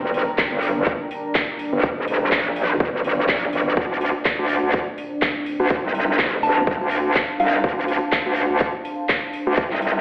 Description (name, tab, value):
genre	bass house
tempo	124 BPM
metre	4/4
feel	swing 56% on 16ths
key	G minor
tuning	A4 = 441 Hz
part	dark analog pad	sustained chords	0.0-10.0 s	A3 to D5	-42 LUFS	equal	none
part	metallic wobble bass	bass	0.0-10.0 s	F1 to D2	-23 LUFS	equal	chorus, tube saturation, sidechain pumping
part	deep dark ambient pad	texture	0.0-10.0 s	D4 to Bb5	-30 LUFS	equal	chorus, built-in reverb, sidechain pumping
part	house drum kit	drums	0.1-9.9 s	handclaps, hi-hat	-27 LUFS	equal	none
part	electronic kick drum	drums	0.4-9.7 s	none	-24 LUFS	equal	none
part	soft synth bell	melody	6.4-7.6 s	F5 to A5	-28 LUFS	equal	chorus, tape echo
room	moderate digital room reverb, RT60 1.3 s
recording	played on a big sound system in a bare room, stone room reverb, telephone sound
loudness	-21 LUFS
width	mono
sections	0.0-10.0 A section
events	none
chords	0.0 Gm; 3.8 Dm7